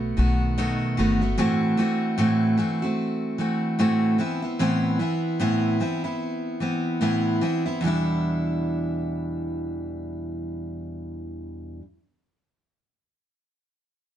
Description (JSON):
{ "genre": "pop", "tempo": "75 BPM", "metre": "4/4", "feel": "swing 60% on 16ths", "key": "E minor", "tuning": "A4 = 440 Hz", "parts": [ { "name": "picked steel-string acoustic guitar", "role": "accompaniment", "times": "0.0-11.9 s", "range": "E2 to F#4", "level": "-23 LUFS", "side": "equal", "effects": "none" }, { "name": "upright bass", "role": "bass", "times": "0.0-1.4 s", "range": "G1 to B1", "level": "-24 LUFS", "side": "equal", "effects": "none" } ], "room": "moderate studio reverb, RT60 0.8 s", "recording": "dark, warm production, nothing above 10.8 kHz", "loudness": "-22 LUFS", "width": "side -10 dB against mid", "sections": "0.0-7.8 A section; 7.8-11.0 B section", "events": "none", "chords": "0.0 B7; 1.4 F#m7b5/A; 4.2 Amadd9; 7.8 Em7", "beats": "0.58 | 1.38 2.19 2.99 3.80 | 4.60 5.41 6.21 7.02 | 7.82 8.62 9.43 10.23" }